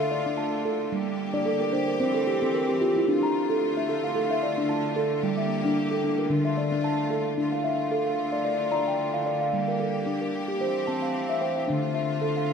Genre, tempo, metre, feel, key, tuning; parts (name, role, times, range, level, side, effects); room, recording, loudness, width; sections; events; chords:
world meditative, meditative tuned percussion; 112 BPM; 4/4; swing 55% on 16ths; D minor; A4 = 441 Hz
clear studio string section; sustained chords; 0.0-12.5 s; D3 to G4; -32 LUFS; left 1 dB
steel tongue drum; arpeggios; 0.0-12.5 s; D3 to Bb5; -24 LUFS; equal
wet concert hall reverb, RT60 1.9 s, small room ambience; -24 LUFS; side -6 dB against mid
0.0-7.4 A section; 7.4-12.5 B section
steel tongue drum fill 1.3-3.1
0.0 Dm; 0.9 Gm; 2.0 C; 3.1 Dm; 5.2 Gm; 6.3 Dm; 9.5 Gm; 10.6 C; 11.7 Dm